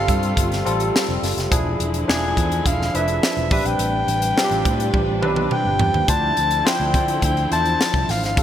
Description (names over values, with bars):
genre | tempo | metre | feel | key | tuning
polished 1980s jazz-funk pop | 105 BPM | 4/4 | straight | D dorian | A4 = 440 Hz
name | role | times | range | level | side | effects
mellow soprano saxophone | melody | 0.0-8.4 s | E5 to A5 | -22 LUFS | left 1 dB | none
barky tine electric piano | accompaniment | 0.0-8.4 s | F3 to C5 | -23 LUFS | left 1 dB | analog chorus
warm studio string section | sustained chords | 0.0-8.4 s | C3 to B4 | -30 LUFS | right 1 dB | none
fingered electric bass | bass | 0.0-8.4 s | E1 to D3 | -24 LUFS | equal | none
crisp fusion drum kit | drums | 0.1-8.4 s | hi-hat, kick drum, snare drum, toms | -22 LUFS | equal | none
room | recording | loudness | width
moderate lush hall reverb, RT60 1.8 s | bright 1980s-style digital production | -17 LUFS | side -10 dB against mid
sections
0.0-8.4 A section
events
drum fill 4.9-6.1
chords
0.0 G9sus4; 1.5 E7b9; 3.5 Am11; 6.1 Dm9